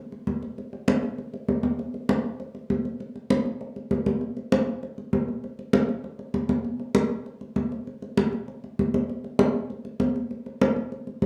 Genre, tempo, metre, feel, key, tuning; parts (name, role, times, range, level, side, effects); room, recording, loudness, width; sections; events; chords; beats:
jazz; 197 BPM; 4/4; straight
congas; percussion; 0.1-11.3 s; -27 LUFS; equal
wet studio reverb, RT60 0.6 s; rough home demo mix, small room ambience; -27 LUFS; mono
0.0-9.1 A section; 9.1-11.3 B section
0.27 | 0.57 0.88 1.18 1.48 | 1.79 2.09 2.39 2.70 | 3.00 3.31 3.61 3.91 | 4.22 4.52 4.82 5.13 | 5.43 5.74 6.04 6.35 | 6.65 6.96 7.26 7.57 | 7.87 8.18 8.48 8.79 | 9.09 9.40 9.70 10.01 | 10.31 10.62 10.92 11.22